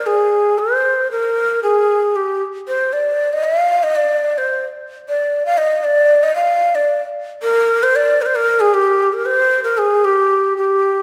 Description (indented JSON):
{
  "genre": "turkish",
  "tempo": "free time",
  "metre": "none",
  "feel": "none",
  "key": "G makam kurdi",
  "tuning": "A4 = 441 Hz",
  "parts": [
    { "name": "breathy ney", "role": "solo", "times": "0.0-11.0 s", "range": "G4 to F5", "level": "-16 LUFS", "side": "equal", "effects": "none" }
  ],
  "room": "wet concert hall reverb, RT60 1.9 s",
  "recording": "none",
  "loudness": "-16 LUFS",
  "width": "mono",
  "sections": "0.0-11.0 A section",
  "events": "none",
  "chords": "none"
}